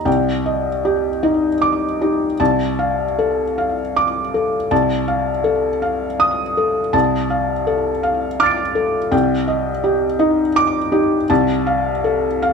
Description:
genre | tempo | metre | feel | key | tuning
neoclassical minimalist piano | 76-84 BPM | 3/4 | rubato | C dorian | A4 = 440 Hz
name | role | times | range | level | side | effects
felt-muted upright piano | solo | 0.0-12.5 s | C2 to D7 | -16 LUFS | left 1 dB | slapback echo
room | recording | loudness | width
light reverb | close, detailed microphones | -16 LUFS | side -5 dB against mid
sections
0.1-12.5 A section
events
none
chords
0.1 Cmadd9; 2.4 Dm7/C; 4.7 F7/C; 6.9 Dm7/C; 9.1 Cmadd9; 11.3 Dm7/C (rootless)

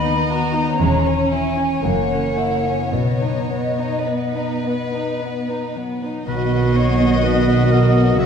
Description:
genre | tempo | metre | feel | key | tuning
classical, slow romantic movement for symphony orchestra | 53-64 BPM | 3/4 | rubato | B major | A4 = 436 Hz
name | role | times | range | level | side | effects
warm chamber violin section | melody | 0.0-8.3 s | B4 to E5 | -27 LUFS | left 4 dB | none
hollow flute section | second line | 0.0-8.3 s | C#5 to B5 | -25 LUFS | left 2 dB | none
warm chamber violin section | second line | 0.0-8.3 s | G#3 to F#4 | -27 LUFS | left 2 dB | none
warm chamber viola section | accompaniment | 0.0-8.3 s | A#3 to C#4 | -24 LUFS | right 4 dB | none
concert harp | arpeggios | 0.0-8.3 s | F#2 to F#5 | -25 LUFS | left 7 dB | none
rich studio cello section | bass | 0.0-8.3 s | D#2 to C#3 | -23 LUFS | right 3 dB | none
warm chamber double bass section | bass | 0.0-8.3 s | E1 to D#2 | -22 LUFS | right 3 dB | none
warm clarinet | second line | 6.3-8.3 s | F#4 to B4 | -26 LUFS | left 3 dB | none
warm oboe | second line | 6.3-8.3 s | B4 to E5 | -26 LUFS | right 1 dB | none
mellow French horn section | sustained chords | 6.3-8.3 s | A#3 to F#4 | -25 LUFS | left 5 dB | none
warm trombone section | sustained chords | 6.3-8.3 s | D#3 to F#3 | -24 LUFS | right 6 dB | none
room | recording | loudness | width
moderate scoring stage reverb, RT60 1.7 s | dark, warm production | -16 LUFS | side -7 dB against mid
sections
0.0-6.3 A section; 6.3-8.3 B section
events
none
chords
0.0 B/D#; 0.8 C#m/E; 1.8 F#7; 2.9 B

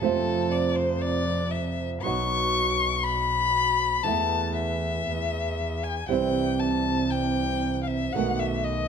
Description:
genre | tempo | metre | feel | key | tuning
tango | 118 BPM | 4/4 | rubato | unclear | A4 = 439 Hz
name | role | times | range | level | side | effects
warm violin | second line | 0.0-8.9 s | A4 to C#6 | -27 LUFS | left 7 dB | none
flamenco guitar | accompaniment | 0.0-8.9 s | B2 to F#4 | -27 LUFS | right 6 dB | none
clear double bass | bass | 0.0-8.9 s | B1 to F2 | -31 LUFS | right 1 dB | none
room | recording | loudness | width
moderate large studio reverb, RT60 1.2 s | none | -23 LUFS | side -7 dB against mid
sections
0.0-8.9 A section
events
violin solo 0.0-8.9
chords
0.0 F; 2.0 B; 4.1 Esus4; 5.1 E; 6.1 C; 8.1 B7

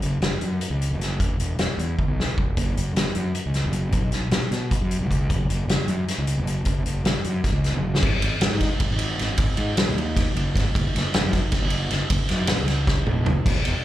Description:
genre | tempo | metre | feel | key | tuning
math rock and midwest emo | 308 BPM (eighths) | 7/8 | straight | unclear | A4 = 440 Hz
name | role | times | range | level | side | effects
fuzz fingered electric bass | bass | 0.0-13.7 s | E1 to B2 | -24 LUFS | equal | overdrive
loose indie drum kit | drums | 0.0-13.7 s | crash cymbal, hi-hat, kick drum, ride cymbal, snare drum, splash cymbal, toms | -23 LUFS | equal | none
room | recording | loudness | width
light reverb | live gig heard through the venue's PA, club reverb | -21 LUFS | side -14 dB against mid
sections
0.0-8.0 A section; 8.0-13.8 B section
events
drum fill 2.0-2.6, 7.7, 12.9-13.5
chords
none

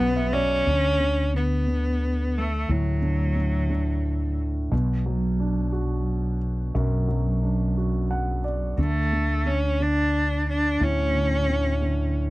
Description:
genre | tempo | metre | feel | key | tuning
six-eight pop ballad | 59 BPM (dotted quarters) | 6/8 | straight | unclear | A4 = 440 Hz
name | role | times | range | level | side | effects
rich cello | melody | 0.0-4.4, 8.8-12.2 s | F#3 to D4 | -25 LUFS | equal | none
dark baby grand piano | accompaniment | 0.0-12.3 s | F#2 to F#5 | -28 LUFS | right 2 dB | none
mellow fretless electric bass | bass | 0.0-12.3 s | B1 to D2 | -24 LUFS | equal | wide subtle chorus
room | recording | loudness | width
little or no reverb | dry, close 1970s-style studio recording | -22 LUFS | side -19 dB against mid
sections
0.7-12.3 A section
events
grand piano fill 0.0-0.7, 7.8-8.8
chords
0.0 B5; 0.7 D; 4.7 Bm; 8.8 D5

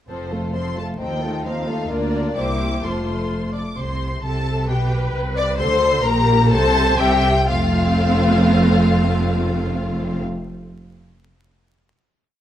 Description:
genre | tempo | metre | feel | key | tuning
quick classical-period movement for string orchestra | 120-134 BPM | 2/4 | rubato | F major | A4 = 440 Hz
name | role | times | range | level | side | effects
warm studio violin section | melody | 0.1-10.2 s | C5 to D6 | -24 LUFS | left 4 dB | none
warm studio violin section | second line | 0.1-10.2 s | Eb4 to D5 | -25 LUFS | left 2 dB | none
rich studio viola section | accompaniment | 0.1-10.2 s | F3 to E5 | -23 LUFS | right 1 dB | none
rich studio cello section | bass | 0.1-10.2 s | C2 to D3 | -23 LUFS | right 1 dB | none
rich studio double bass section | bass | 0.1-10.2 s | F1 to Eb2 | -24 LUFS | right 1 dB | none
room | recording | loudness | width
moderate recital hall reverb, RT60 1.6 s | vinyl crackle | -17 LUFS | side -11 dB against mid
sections
0.1-3.8 A section; 3.8-7.5 B section; 7.5-9.4 final chord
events
slowing down 5.1-7.5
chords
0.1 F; 1.0 F7/Eb; 1.9 Bb/D; 2.4 C7; 2.8 F; 3.8 N.C.; 4.2 Am/C; 4.7 G/B; 5.6 D5; 6.0 Gm/Bb; 6.5 Am/C; 7.5 F

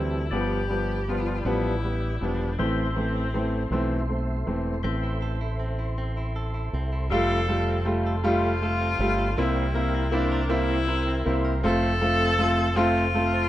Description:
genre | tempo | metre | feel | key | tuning
six-eight pop ballad | 53 BPM (dotted quarters) | 6/8 | straight | unclear | A4 = 440 Hz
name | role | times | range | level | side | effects
rich viola | melody | 0.0-13.5 s | C4 to A4 | -29 LUFS | left 3 dB | none
clear concert grand piano | accompaniment | 0.0-13.4 s | E3 to F4 | -26 LUFS | equal | none
percussive tonewheel organ | sustained chords | 0.0-13.5 s | C4 to C6 | -36 LUFS | equal | chorus vibrato, slow rotary speaker
fingered electric bass with an envelope filter | bass | 0.0-13.5 s | E1 to D2 | -27 LUFS | equal | none
direct-recorded clean electric guitar | arpeggios | 4.8-13.5 s | G3 to Bb4 | -36 LUFS | right 2 dB | none
room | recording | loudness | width
studio ambience | rough home demo mix | -23 LUFS | side -13 dB against mid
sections
0.0-4.8 A section; 4.8-7.1 B section; 7.1-13.5 C section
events
grand piano solo 4.8-7.1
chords
0.3 G7; 2.6 Am; 7.1 Fadd9; 9.4 C7; 11.6 F

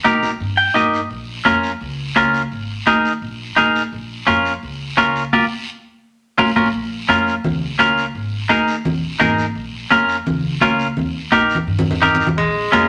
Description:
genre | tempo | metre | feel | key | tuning
latin, cumbia | 170 BPM | 4/4 | straight | Bb dorian | A4 = 440 Hz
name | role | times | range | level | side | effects
semi-hollow electric guitar | accompaniment | 0.0-12.9 s | Db4 to G5 | -17 LUFS | equal | none
guiro | percussion | 0.0-12.9 s | none | -34 LUFS | equal | none
upright bass | bass | 0.1-12.9 s | Ab1 to G2 | -30 LUFS | equal | none
congas | percussion | 0.1-12.9 s | none | -24 LUFS | equal | none
clear tenor saxophone | second line | 12.4-12.9 s | Ab3 | -20 LUFS | equal | none
timbales | percussion | 12.4-12.9 s | none | -32 LUFS | equal | none
room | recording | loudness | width
wet studio reverb, RT60 0.9 s | none | -18 LUFS | mono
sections
0.0-6.7 A section; 6.7-12.9 A section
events
clean electric guitar fill 0.4-1.1; band accent 5.3-6.7; drum fill 11.3-12.4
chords
0.0 Eb; 1.1 Bbm; 2.5 Absus2; 3.9 Bbm; 5.3 Ebadd9; 6.0 Bbm; 8.2 Absus2; 9.6 Bbm; 11.0 Eb; 12.4 Bbm7

